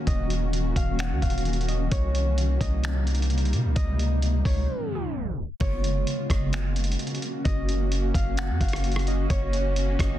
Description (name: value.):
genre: hip hop, atmospheric cloud-rap.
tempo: 130 BPM.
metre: 4/4.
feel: half-time.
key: Gb lydian.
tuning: A4 = 439 Hz.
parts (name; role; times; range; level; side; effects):
concert harp; melody; 0.0-10.2 s; Db5 to Gb5; -35 LUFS; left 1 dB; ping-pong delay.
granular cloud pad; sustained chords; 0.0-10.2 s; C3 to Gb4; -30 LUFS; equal; built-in reverb, sidechain pumping.
long sustained 808-style bass; bass; 0.1-10.2 s; Eb1 to C3; -25 LUFS; equal; none.
lo-fi sampler-style drum kit; drums; 0.1-10.1 s; finger snaps, hi-hat, kick drum, rim click; -28 LUFS; equal; soft clipping on snare.
reverse cymbal; sound effects; 4.8-5.6 s; none; -48 LUFS; right 7 dB; none.
room: digital ambience.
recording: dense, heavily limited modern master, tape stop.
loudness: -23 LUFS.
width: side -12 dB against mid.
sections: 0.0-5.6 A section; 5.6-10.2 B section.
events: break 4.7-5.6; tape stop 4.7-5.6; reverse cymbal 4.8-5.6.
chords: 0.0 Ebm7; 1.9 Cm7; 3.8 Db7; 5.6 Gb.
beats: | 0.07 0.53 0.99 1.45 | 1.92 2.38 2.84 3.30 | 3.76 4.22 4.68 5.15 | 5.61 6.07 6.53 6.99 | 7.45 7.92 8.38 8.84 | 9.30 9.76.